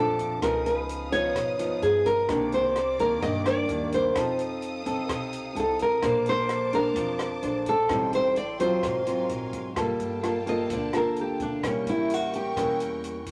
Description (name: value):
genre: bossa nova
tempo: 128 BPM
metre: 4/4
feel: straight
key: G minor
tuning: A4 = 441 Hz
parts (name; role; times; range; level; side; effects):
- nylon-string guitar; melody; 0.0-12.8 s; C#4 to Eb5; -28 LUFS; equal; none
- nylon-string guitar; accompaniment; 0.0-13.3 s; F2 to C5; -31 LUFS; equal; none
- clear studio string section; sustained chords; 0.0-13.3 s; A4 to D#6; -41 LUFS; equal; none
- upright bass; bass; 0.0-13.3 s; G1 to G2; -41 LUFS; equal; none
- compact cocktail drum kit; drums; 0.2-13.3 s; hi-hat, kick drum, rim click; -39 LUFS; equal; none
room: wet studio reverb, RT60 0.6 s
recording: none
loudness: -26 LUFS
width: mono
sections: 0.0-9.8 A section; 9.8-13.3 B section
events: nylon-string guitar solo 9.8-13.3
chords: 0.4 C#9; 2.3 Cm9; 4.2 F7; 6.0 Bbmaj9; 7.9 Am7b5; 8.8 Ab13; 9.8 Gm9; 11.6 A7b9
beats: | 0.42 0.88 1.35 1.82 | 2.29 2.75 3.22 3.69 | 4.16 4.62 5.09 5.56 | 6.02 6.49 6.96 7.42 | 7.89 8.36 8.83 9.29 | 9.76 10.23 10.70 11.16 | 11.63 12.10 12.56 13.03